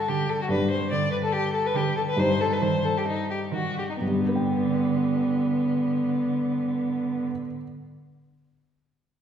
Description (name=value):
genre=quick classical-period movement for piano quartet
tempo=122-147 BPM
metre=4/4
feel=rubato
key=G major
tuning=A4 = 440 Hz
part: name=rich violin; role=melody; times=0.0-7.3 s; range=B3 to D5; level=-25 LUFS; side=left 1 dB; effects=none
part: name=warm baby grand piano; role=accompaniment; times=0.0-7.6 s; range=G2 to G5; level=-29 LUFS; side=left 1 dB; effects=none
part: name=rich cello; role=second line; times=0.1-7.3 s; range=D3 to Eb3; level=-31 LUFS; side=right 5 dB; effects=none
room=wet scoring stage reverb, RT60 1.6 s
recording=heard from further back in the room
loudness=-23 LUFS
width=side -8 dB against mid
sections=0.0-4.0 A section; 4.0-7.8 B section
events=slowing down 0.0-4.0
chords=0.0 D/G; 0.5 G5; 2.2 Cm/G; 4.0 G